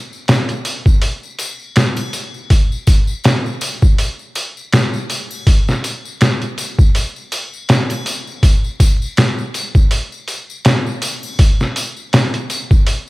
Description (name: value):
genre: trip hop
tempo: 81 BPM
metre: 4/4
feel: swing 56% on 16ths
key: none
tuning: none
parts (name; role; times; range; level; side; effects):
- tambourine and triangle; percussion; 0.1-13.0 s; none; -28 LUFS; left 4 dB; none
- trip hop sampler-style drum kit; drums; 0.3-13.1 s; hi-hat, kick drum, snare drum; -13 LUFS; equal; none
room: digital ambience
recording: vinyl crackle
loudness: -14 LUFS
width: side -21 dB against mid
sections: 0.0-13.1 A section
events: none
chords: none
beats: 0.28 1.02 1.76 | 2.50 3.25 3.98 4.73 | 5.47 6.21 6.95 7.69 | 8.43 9.17 9.91 10.65 | 11.39 12.13 12.87